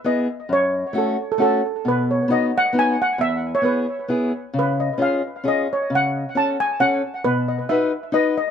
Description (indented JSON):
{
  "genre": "alpine folk, alpine dance band",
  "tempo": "134 BPM",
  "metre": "3/4",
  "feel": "swing 54% on 8ths",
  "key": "unclear",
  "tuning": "A4 = 440 Hz",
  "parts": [
    { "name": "steel pan", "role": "melody", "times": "0.0-8.5 s", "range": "A4 to A5", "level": "-21 LUFS", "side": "equal", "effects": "tape echo" },
    { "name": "fingerpicked acoustic archtop guitar", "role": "accompaniment", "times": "0.0-8.4 s", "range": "E2 to B4", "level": "-21 LUFS", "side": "left 1 dB", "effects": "none" }
  ],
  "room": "wet small room reverb, RT60 0.5 s",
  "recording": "none",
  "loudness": "-18 LUFS",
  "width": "side -8 dB against mid",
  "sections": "0.0-8.5 A section",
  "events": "none",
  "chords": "0.5 F#m; 1.8 B; 3.2 E; 4.5 C#; 5.9 F#m/C#; 7.2 B"
}